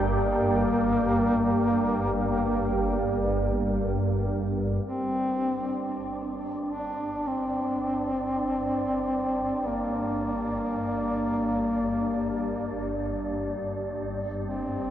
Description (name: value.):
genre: dark ambient drone.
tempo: free time.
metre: none.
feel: none.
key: G minor.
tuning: A4 = 440 Hz.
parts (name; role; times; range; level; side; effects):
dark duduk; melody; 0.0-14.9 s; Bb3 to D4; -28 LUFS; left 1 dB; diffuse ambient delay.
deep dark ambient pad; sustained chords; 0.0-4.9 s; G3 to G5; -30 LUFS; right 1 dB; chorus, built-in reverb.
swarming drone; drone; 0.0-14.9 s; G1 to G2; -32 LUFS; equal; built-in reverb.
wind-like tuned noise texture; texture; 0.0-14.9 s; Bb3 to D5; -33 LUFS; right 1 dB; built-in reverb.
room: wet huge ambient reverb, RT60 7.4 s.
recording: worn, warbling old tape, cassette tape, warbly pitch drift.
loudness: -25 LUFS.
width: side -11 dB against mid.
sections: 0.0-4.9 A section; 4.9-14.9 B section.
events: fade-in on synth drone 4.9-14.9.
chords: 0.0 Gm.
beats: free time.